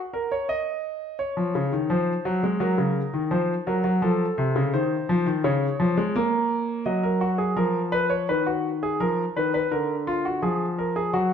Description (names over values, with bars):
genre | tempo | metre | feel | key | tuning
classical, baroque-style two-part invention for grand piano | 85 BPM | 4/4 | straight | Eb minor | A4 = 440 Hz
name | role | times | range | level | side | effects
clear grand piano | solo | 0.1-11.3 s | C3 to Eb5 | -22 LUFS | equal | none
room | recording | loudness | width
wet stone room reverb, RT60 1.3 s | dark, warm production | -22 LUFS | side -7 dB against mid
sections
0.0-11.3 A section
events
none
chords
0.0 N.C.; 1.2 Dbmaj9; 2.6 Ebm; 4.0 F7; 5.4 Bbm/Db; 6.9 Ebm/Gb; 8.3 Abm/Eb (rootless); 9.7 Bb7/D